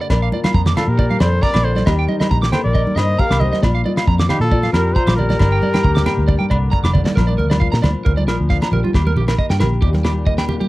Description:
highlife guitar band; 136 BPM; 4/4; swing 53% on 16ths; Bb major; A4 = 440 Hz
nylon-string guitar; accompaniment; 0.0-10.7 s; G2 to C5; -25 LUFS; left 5 dB
electric guitar at the edge of break-up; arpeggios; 0.0-10.7 s; F4 to D6; -24 LUFS; right 5 dB; analog delay
vintage muted fingered electric bass; bass; 0.1-10.6 s; F1 to Bb2; -18 LUFS; equal
damped 70s drum kit; drums; 0.1-10.5 s; kick drum, snare drum; -18 LUFS; equal; cassette tape
agogo bells; percussion; 0.1-10.5 s; -28 LUFS; equal
congas; percussion; 0.3-10.7 s; -23 LUFS; right 2 dB
warm trumpet; melody; 0.8-6.7 s; G4 to F5; -23 LUFS; equal; cassette tape
growling alto saxophone; second line; 0.8-6.7 s; Eb4 to C5; -26 LUFS; left 4 dB
little or no reverb; home recording on cassette; -14 LUFS; side -18 dB against mid
0.0-7.2 A section; 7.2-10.7 B section
drum fill 6.3-7.2
0.1 Bb; 1.9 Eb; 3.6 Bb; 5.4 Gm; 7.2 Bb; 8.9 Eb

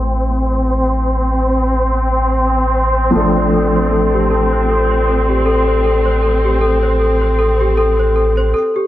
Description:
trip hop; 78 BPM; 4/4; swing 56% on 16ths; A4 = 440 Hz
felt-muted upright piano; accompaniment; 0.0-8.6 s; E3 to A4; -21 LUFS; equal; harmonic tremolo, tape echo
warm studio string section; sustained chords; 0.0-8.5 s; C4; -18 LUFS; equal; low-pass filter
round analog bass; bass; 0.0-8.5 s; A1; -17 LUFS; equal
worn celesta; arpeggios; 3.2-8.9 s; G4 to C5; -16 LUFS; left 1 dB; ping-pong delay
light reverb, small room ambience; low-pass filter; -12 LUFS; side -14 dB against mid
0.0-8.9 A section
filter sweep on string section 0.0-8.9; filter sweep 0.0-8.9
0.0 Am; 3.2 Dm/A

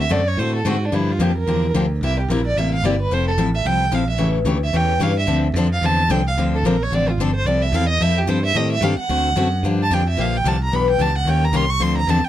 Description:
acoustic string swing (jazz manouche); 221 BPM; 4/4; swing 58% on 8ths; D minor, F major from 7.5 s; A4 = 440 Hz
warm violin; melody; 0.0-12.3 s; D4 to Db6; -22 LUFS; right 2 dB
picked steel-string acoustic guitar; accompaniment; 0.0-12.2 s; C3 to Bb4; -21 LUFS; left 4 dB
modern bright picked electric bass; bass; 0.0-12.3 s; F1 to A2; -20 LUFS; right 1 dB
little or no reverb; close, detailed microphones; -16 LUFS; side -12 dB against mid
0.0-7.5 A section; 7.5-12.3 A section
violin solo 0.0-12.3
0.0 D7; 0.9 Gm7; 2.0 C7; 3.1 Fmaj9; 4.2 A7; 5.3 Dm9; 7.5 Fmaj7; 8.5 Am7b5; 9.1 D7; 9.6 Gm7; 10.7 Em7; 11.3 Eb7

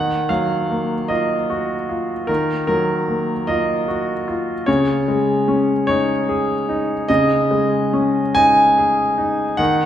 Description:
neoclassical minimalist piano; 50 BPM (dotted quarters); 6/8; rubato; A4 = 439 Hz
bright grand piano; solo; 0.0-9.9 s; Db3 to Ab5; -16 LUFS; equal
wet recital hall reverb, RT60 1.7 s; heard from further back in the room; -16 LUFS; side -10 dB against mid
0.0-9.9 A section
0.0 Ebmadd9; 4.7 Dbsus2

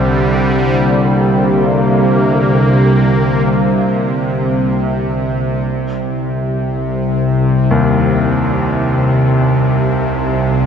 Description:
ambient; free time; C minor; A4 = 437 Hz
sweeping resonant pad; sustained chords; 0.0-5.7 s; C2 to D4; -16 LUFS; equal; chorus, shimmer reverb
bowed-like drone; drone; 0.0-10.7 s; C2 to C3; -14 LUFS; equal; built-in reverb
bright concert grand piano; arpeggios; 7.7-10.7 s; Eb2; -18 LUFS; left 1 dB; tape echo, shimmer reverb
wet cathedral reverb, RT60 6.0 s; -12 LUFS; side -7 dB against mid
0.0-5.7 A section; 5.7-10.7 A section
0.0 Gm/C; 5.7 Cm

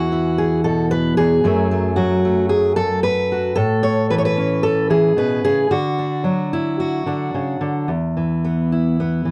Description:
folk, solo fingerstyle acoustic guitar; 112 BPM; 4/4; rubato; E mixolydian; A4 = 440 Hz
fingerpicked steel-string acoustic guitar; solo; 0.0-9.3 s; E2 to C#5; -19 LUFS; equal
moderate studio ambience, RT60 0.5 s; dark, warm production; -19 LUFS; mono
0.0-7.9 A section; 7.9-9.3 B section
0.0 E; 1.4 F#madd9; 3.6 Aadd9; 5.7 D; 7.9 E5

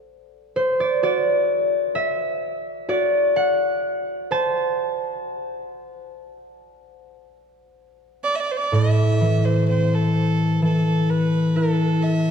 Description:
celtic folk, Celtic slow air; 58-66 BPM; 4/4; rubato; A dorian; A4 = 435 Hz
concert harp; accompaniment; 0.0-12.3 s; A2 to A5; -19 LUFS; equal
rich fiddle; melody; 8.2-12.3 s; A4 to E5; -25 LUFS; right 3 dB; slapback echo
wet church reverb, RT60 3.2 s; dark, warm production, faint mains hum; -19 LUFS; side -6 dB against mid
0.0-8.7 A section; 8.7-12.3 B section
harp solo 0.0-8.7
0.0 N.C.; 1.0 Dadd9; 4.8 N.C.; 8.7 Am

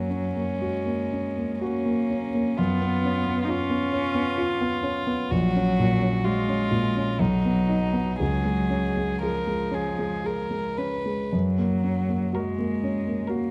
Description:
classical, slow romantic movement for piano trio; 55-67 BPM; 3/4; rubato; F# major; A4 = 440 Hz
warm violin; melody; 0.0-13.5 s; C#4 to B4; -33 LUFS; equal
dark cello; second line; 0.0-13.5 s; E#3 to D#4; -30 LUFS; equal
dark grand piano; accompaniment; 0.0-13.5 s; A#1 to G#4; -28 LUFS; equal
moderate concert hall reverb, RT60 1.9 s; close, detailed microphones, vinyl crackle; -25 LUFS; mono
0.0-13.5 A section
0.0 F#; 2.6 C#7/F#; 5.3 F#/A#; 7.2 B; 8.2 C#; 11.3 F#

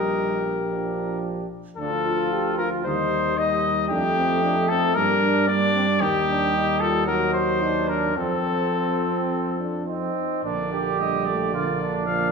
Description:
classical, brass quintet; 111 BPM; 4/4; rubato; Bb major; A4 = 440 Hz
clear trumpet; melody; 0.0-12.3 s; G4 to F5; -24 LUFS; left 5 dB
mellow trumpet; second line; 0.0-12.3 s; C4 to G4; -29 LUFS; right 6 dB
clear French horn; accompaniment; 0.0-12.3 s; G3 to G4; -29 LUFS; left 2 dB
warm trombone; accompaniment; 0.0-12.3 s; D3 to A3; -30 LUFS; right 3 dB
mellow tuba; bass; 0.0-12.3 s; Bb1 to G2; -28 LUFS; right 3 dB
wet recital hall reverb, RT60 1.3 s; minimal, uncompressed stereo recording; -20 LUFS; side -5 dB against mid
0.0-10.4 A section; 10.4-12.3 B section
0.0 Eb/Bb; 0.7 Bb; 1.8 Dm; 2.9 Eb; 3.9 F9; 5.0 Gm; 6.0 Eb; 7.1 Ebm; 8.2 F; 10.4 Bb

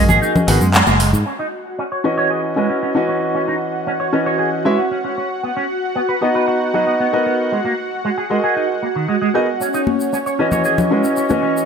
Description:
nu-disco, nu disco; 115 BPM; 4/4; straight; C# dorian; A4 = 440 Hz
warm concert grand piano; accompaniment; 0.0-11.7 s; E3 to A#5; -19 LUFS; equal; tape echo
electric guitar with an envelope filter; riff; 0.0-11.5 s; D#3 to C#5; -21 LUFS; right 3 dB; wide subtle chorus, low-pass filter, tape echo
fingered electric bass; bass; 0.0-1.2 s; F#1 to G#2; -16 LUFS; equal
congas and egg shaker; percussion; 0.1-1.2, 9.6-11.7 s; -21 LUFS; left 2 dB
pop drum kit; drums; 0.5-1.4 s; crash cymbal, handclaps, hi-hat; -18 LUFS; equal; low-pass filter on hats, low-pass filter on snare, low-pass filter on cymbals
lush unison pad; sustained chords; 1.3-11.7 s; C#4 to F#5; -22 LUFS; right 1 dB; chorus, phaser, vintage 12-bit sampler grit
moderate lush hall reverb, RT60 1.8 s, digital ambience; -15 LUFS; side -6 dB against mid
0.0-1.3 A section; 1.3-11.7 B section
filter sweep on clean electric guitar 0.0-1.3; band accent 0.7
0.0 G#7sus2; 1.3 C#m11; 5.4 Bmaj7; 7.5 G#7sus2; 9.6 C#m11

